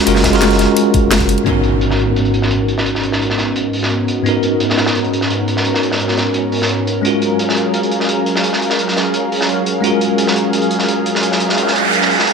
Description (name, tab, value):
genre	liquid drum and bass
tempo	172 BPM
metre	4/4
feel	straight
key	G# dorian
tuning	A4 = 440 Hz
part	bell-like tine electric piano	accompaniment	0.0-12.3 s	G#2 to A#4	-16 LUFS	equal	fast stereo tremolo, low-pass filter, dub echo
part	warm sub bass	bass	0.1-1.4 s	F#1	-18 LUFS	equal	none
part	crunchy breakbeat drum kit	drums	0.1-12.3 s	hi-hat, snare drum	-19 LUFS	equal	high-pass filter on hats, low-pass filter on hats, small room reverb, high-pass filter on snare, low-pass filter on snare, high-pass filter on room, low-pass filter on room
part	drum and bass drum kit	drums	0.1-1.4 s	hi-hat, snare drum	-20 LUFS	left 1 dB	overdrive, small room reverb
part	electronic kick drum	drums	0.2-1.3 s	none	-18 LUFS	equal	small room reverb
part	lush unison pad	sustained chords	1.5-12.3 s	G#2 to E#5	-18 LUFS	equal	chorus, sidechain pumping
part	impact and noise sweep	sound effects	1.5-2.9, 11.4-12.3 s	none	-18 LUFS	right 2 dB	none
room	moderate lush hall reverb, RT60 1.7 s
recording	none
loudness	-13 LUFS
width	side -5 dB against mid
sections	0.0-1.5 A section; 1.5-12.3 B section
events	filter sweep on tine electric piano 0.0-1.5, 1.5-12.3; impact 1.5-2.9; filter sweep on analog synth pad 1.5-12.3; noise sweep 11.4-12.3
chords	0.0 F#maj9; 1.5 G#m11; 7.0 F#maj9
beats	| 0.07 0.42 0.77 1.12 | 1.46 1.81 2.16 2.51 | 2.86 3.21 3.56 3.91 | 4.25 4.60 4.95 5.30 | 5.65 6.00 6.35 6.70 | 7.05 7.39 7.74 8.09 | 8.44 8.79 9.14 9.49 | 9.84 10.19 10.53 10.88 | 11.23 11.58 11.93 12.28